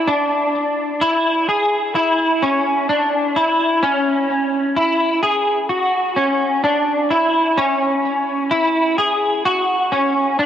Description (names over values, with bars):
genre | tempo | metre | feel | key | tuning
dream pop | 64 BPM | 4/4 | straight | unclear | A4 = 439 Hz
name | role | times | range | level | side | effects
semi-hollow electric guitar | solo | 0.0-10.5 s | C#4 to G#4 | -15 LUFS | equal | ensemble chorus, ping-pong delay
room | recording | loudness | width
moderate huge ambient reverb, RT60 5.1 s | worn, warbling old tape, cassette tape, warbly pitch drift | -15 LUFS | side -10 dB against mid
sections
0.0-10.5 A section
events
none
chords
none